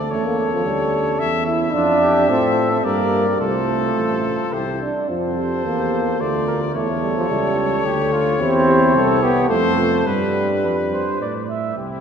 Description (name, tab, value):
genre	classical, brass quintet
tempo	108 BPM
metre	3/4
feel	straight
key	unclear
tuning	A4 = 441 Hz
part	bright trumpet	melody	0.0-12.0 s	E4 to E5	-24 LUFS	left 6 dB	none
part	warm flugelhorn	second line	0.0-12.0 s	E4 to E5	-24 LUFS	right 2 dB	none
part	mellow French horn	accompaniment	0.0-12.0 s	C#4 to A4	-27 LUFS	left 3 dB	none
part	mellow trombone	accompaniment	0.0-12.0 s	F3 to E4	-20 LUFS	right 1 dB	none
part	dark tuba	bass	0.0-12.0 s	A1 to A2	-24 LUFS	right 2 dB	none
room	wet church reverb, RT60 3.4 s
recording	recorded in a church or concert hall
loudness	-16 LUFS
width	side -7 dB against mid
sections	0.0-11.8 A section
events	none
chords	0.1 A7; 1.7 Dm/F; 2.8 Gm; 3.4 F/C; 4.5 C; 5.1 F; 6.8 A7; 8.4 C/E; 9.5 F; 10.1 G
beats	| 0.11 0.65 1.20 | 1.74 2.29 2.85 | 3.40 3.97 4.53 | 5.09 5.65 6.21 | 6.76 7.30 7.85 | 8.40 8.95 9.50 | 10.07 10.64 11.21 | 11.77